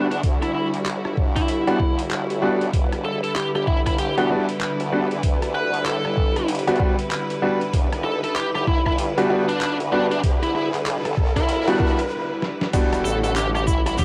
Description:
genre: glitch hop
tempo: 96 BPM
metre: 4/4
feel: swing 61% on 16ths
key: E minor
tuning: A4 = 440 Hz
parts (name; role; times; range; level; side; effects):
- bluesy overdriven lead guitar; melody; 0.0-14.0 s; D4 to B4; -28 LUFS; equal; distortion, low-pass filter, cassette tape, tape echo
- clear symphonic string section; sustained chords; 0.0-14.0 s; D3 to B4; -30 LUFS; equal; vintage 12-bit sampler grit, sidechain pumping, cassette tape
- clear baby grand piano; stabs; 0.0-13.7 s; G3 to F#4; -25 LUFS; equal; sidechain pumping, cassette tape, tape echo
- formant-sweep wobble bass; bass; 0.0-14.0 s; E1 to E2; -30 LUFS; equal; chorus, tube saturation, high-pass filter
- boom bap sampler-style drum kit; drums; 0.1-14.0 s; crash cymbal, handclaps, hi-hat, rim click, snare drum; -32 LUFS; equal; cassette tape
- electronic kick drum; drums; 0.2-13.8 s; none; -24 LUFS; equal; cassette tape
- riser; sound effects; 5.5-12.1 s; none; -35 LUFS; equal; none
- tube shaker; percussion; 12.7-14.0 s; none; -40 LUFS; equal; none
- fingered electric bass; bass; 14.0 s; E1; -21 LUFS; equal; none
room: moderate booth ambience, RT60 0.2 s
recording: home recording on cassette, vinyl crackle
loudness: -22 LUFS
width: mono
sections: 0.0-12.7 A section; 12.7-14.0 B section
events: build-up 0.0-12.7; riser 5.5-12.1; break 12.1-12.7; drum fill 12.4-12.7; drop 12.7-14.0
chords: 0.0 Em9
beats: | 0.24 0.86 1.49 2.11 | 2.74 3.36 3.99 4.61 | 5.24 5.86 6.49 7.11 | 7.74 8.36 8.99 9.61 | 10.24 10.86 11.49 12.11 | 12.74 13.36 13.99

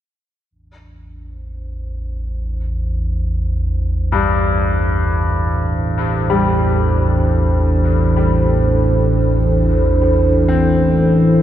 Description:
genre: dark ambient drone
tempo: free time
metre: none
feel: none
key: unclear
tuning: A4 = 440 Hz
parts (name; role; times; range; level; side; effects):
- dark analog pad; sustained chords; 0.5-11.4 s; A3 to C5; -20 LUFS; right 2 dB; chorus
- analog drone; drone; 1.1-11.4 s; A1 to E2; -16 LUFS; equal; wide subtle chorus
- clear concert grand piano; arpeggios; 4.1-11.4 s; G2 to C4; -20 LUFS; left 3 dB; tape echo
room: wet lush hall reverb, RT60 2.8 s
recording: dreamy mix soaked in reverb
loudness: -14 LUFS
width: side -11 dB against mid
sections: 0.5-11.4 A section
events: fade-in on analog synth pad 0.5-11.4; filter sweep on synth drone 0.5-11.4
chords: 0.5 Cadd9/A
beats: free time

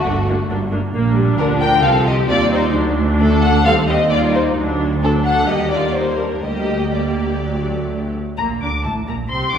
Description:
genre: quick classical-period movement for string orchestra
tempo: 122-136 BPM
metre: 4/4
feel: rubato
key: G minor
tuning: A4 = 439 Hz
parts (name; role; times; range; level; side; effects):
- muted studio violin section; melody; 0.0-9.6 s; A3 to D6; -23 LUFS; left 4 dB; none
- muted studio violin section; second line; 0.0-9.6 s; F#4 to G5; -20 LUFS; left 2 dB; none
- muted studio cello section; bass; 0.0-9.6 s; D2 to D3; -22 LUFS; right 1 dB; none
- muted studio double bass section; bass; 0.0-9.6 s; G1 to Eb2; -22 LUFS; right 2 dB; none
- muted studio viola section; accompaniment; 0.1-9.6 s; F3 to D4; -22 LUFS; right 2 dB; none
room: wet scoring stage reverb, RT60 1.7 s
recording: heard from further back in the room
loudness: -15 LUFS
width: side -8 dB against mid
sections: 0.0-8.4 A section; 8.4-9.6 B section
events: none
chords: 0.1 Gm; 0.9 Bb; 1.8 Cm; 2.7 D; 3.7 Cm/Eb; 4.6 D; 5.5 Eb; 6.4 Gm/D; 7.4 D; 8.4 Gm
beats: 0.06 0.50 | 0.94 1.39 1.84 2.29 | 2.75 3.20 3.65 4.11 | 4.57 5.03 5.49 5.96 | 6.45 6.94 7.42 7.91 | 8.38 8.84 9.31

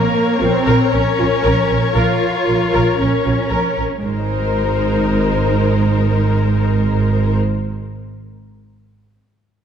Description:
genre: cinematic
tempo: 116 BPM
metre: 4/4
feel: straight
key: Ab major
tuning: A4 = 440 Hz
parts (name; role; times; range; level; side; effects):
- warm studio violin section; second line; 0.0-7.4 s; Bb4 to Db5; -21 LUFS; left 8 dB; none
- rich symphonic viola section; accompaniment; 0.0-7.3 s; Eb4 to Bb4; -22 LUFS; left 1 dB; none
- warm symphonic cello section; bass; 0.0-7.4 s; Ab3 to F4; -21 LUFS; right 2 dB; none
- warm symphonic double bass section; bass; 0.4-7.4 s; Ab1 to Bb1; -18 LUFS; right 3 dB; none
room: moderate scoring stage reverb, RT60 1.9 s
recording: dark, warm production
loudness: -14 LUFS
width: side -8 dB against mid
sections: 0.0-4.0 A section; 4.0-8.2 B section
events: none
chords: 0.0 Bbm; 4.0 Abadd9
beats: 0.41 0.92 1.44 | 1.95 2.46 2.98 3.50 | 4.02 4.54 5.06 5.58 | 6.09 6.61 7.12

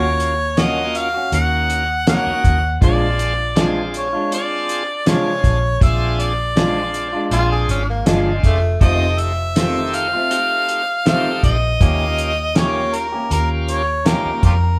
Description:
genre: straight-eighth soul blues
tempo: 80 BPM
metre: 4/4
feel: straight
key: Bb mixolydian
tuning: A4 = 440 Hz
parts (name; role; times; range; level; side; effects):
- clear harmonica; melody; 0.0-14.8 s; F4 to Gb5; -22 LUFS; equal; overdrive
- bright tonewheel organ; accompaniment; 0.0-14.6 s; C3 to Ab4; -29 LUFS; equal; slow rotary speaker, overdrive
- electric guitar through a small old amp; stabs; 0.0-14.3 s; Eb3 to G4; -27 LUFS; equal; spring reverb
- vintage muted fingered electric bass; bass; 0.0-14.8 s; F1 to F2; -23 LUFS; equal; none
- cloth-damped thuddy drum kit; drums; 0.2-14.6 s; hi-hat, kick drum, snare drum; -20 LUFS; equal; none
- growling tenor saxophone; second line; 7.3-8.8 s; Ab3 to Ab4; -24 LUFS; equal; none
room: moderate large studio reverb, RT60 0.8 s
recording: band playing live in one room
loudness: -18 LUFS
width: mono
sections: 0.0-14.8 A section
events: none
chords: 0.0 Ebm7; 2.8 Bb7; 8.8 F7; 11.8 Eb7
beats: 0.57 1.32 2.07 | 2.82 3.57 4.31 5.06 | 5.81 6.56 7.31 8.06 | 8.81 9.56 10.31 11.06 | 11.81 12.56 13.31 14.06

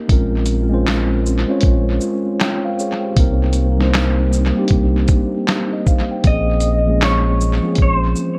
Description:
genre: lo-fi hip hop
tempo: 78 BPM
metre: 4/4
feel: swing 62% on 16ths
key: Bb dorian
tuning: A4 = 438 Hz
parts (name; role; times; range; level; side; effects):
- mellow tine electric piano; accompaniment; 0.0-8.4 s; F3 to G5; -21 LUFS; equal; low-pass filter, tape echo
- sub bass with octave; bass; 0.1-8.1 s; Bb1 to C2; -20 LUFS; equal; none
- lo-fi sampler-style drum kit; drums; 0.1-8.4 s; handclaps, hi-hat, kick drum, shaker, snare drum; -20 LUFS; equal; tape echo
- electric guitar through a small old amp; melody; 6.3-8.4 s; C5 to Eb5; -23 LUFS; equal; phaser, low-pass filter, tape echo
room: light reverb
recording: echo-heavy mix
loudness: -17 LUFS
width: mono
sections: 0.0-8.4 A section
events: none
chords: 0.1 Bbm9; 3.2 Cm7; 6.2 Bbm9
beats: | 0.09 0.86 1.63 2.40 | 3.17 3.94 4.71 5.48 | 6.25 7.02 7.79

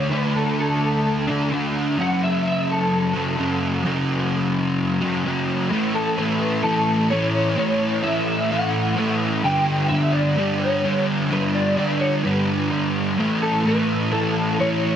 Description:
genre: rock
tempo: 128 BPM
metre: 4/4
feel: straight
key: A mixolydian from 5.7 s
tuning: A4 = 440 Hz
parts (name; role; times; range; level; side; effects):
- electric guitar through a small old amp; melody; 0.0-15.0 s; A4 to G5; -24 LUFS; left 1 dB; ensemble chorus, slapback echo
- fuzz guitar; riff; 0.0-15.0 s; F#2 to D4; -20 LUFS; equal; distortion, analog chorus
room: light reverb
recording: dense, heavily limited modern master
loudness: -19 LUFS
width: side -9 dB against mid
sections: 0.0-5.7 A section; 5.7-15.0 B section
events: none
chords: 0.0 D5; 2.0 F#m; 5.7 A; 9.4 G5; 13.2 A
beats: | 0.11 0.57 1.04 1.51 | 1.98 2.44 2.91 3.38 | 3.85 4.31 4.78 5.25 | 5.71 6.18 6.64 7.11 | 7.57 8.04 8.51 8.97 | 9.44 9.90 10.37 10.84 | 11.30 11.77 12.24 12.71 | 13.18 13.65 14.12 14.59

